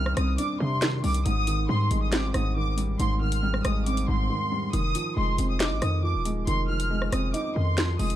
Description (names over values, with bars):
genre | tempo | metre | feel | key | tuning
hip hop, drill | 138 BPM | 4/4 | half-time | unclear | A4 = 441 Hz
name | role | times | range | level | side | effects
warm studio violin section | melody | 0.0-8.2 s | C6 to F6 | -31 LUFS | equal | digital delay
dark baby grand piano | accompaniment | 0.0-8.2 s | Ab2 to Eb4 | -29 LUFS | right 1 dB | none
hard-hitting 808-style bass | bass | 0.0-8.2 s | Eb1 to C3 | -26 LUFS | equal | none
drill drum kit | drums | 0.1-8.2 s | handclaps, hi-hat, rim click, snare drum | -30 LUFS | equal | none
room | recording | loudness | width
little or no reverb | dark, warm production | -23 LUFS | side -12 dB against mid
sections
0.0-8.2 A section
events
break 4.3-4.7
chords
0.0 Cmadd9; 1.3 Abmaj7; 4.7 Fm7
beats
0.39 0.82 | 1.26 1.69 2.12 2.56 | 3.00 3.43 3.86 4.30 | 4.73 5.17 5.60 6.04 | 6.47 6.91 7.34 7.78